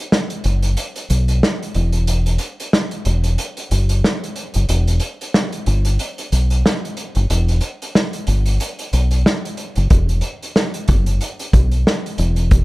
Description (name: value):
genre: hip hop, boom-bap hip-hop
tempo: 92 BPM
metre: 4/4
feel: swing 58% on 16ths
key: E minor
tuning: A4 = 445 Hz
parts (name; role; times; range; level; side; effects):
- vintage drum kit; drums; 0.1-12.6 s; hi-hat, kick drum, snare drum; -19 LUFS; equal; none
- deep dub fingered electric bass; bass; 0.5-12.6 s; E1 to B1; -16 LUFS; equal; none
room: little or no reverb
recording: dark, warm production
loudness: -16 LUFS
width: side -20 dB against mid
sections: 0.0-12.6 A section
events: break 0.0-9.9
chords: none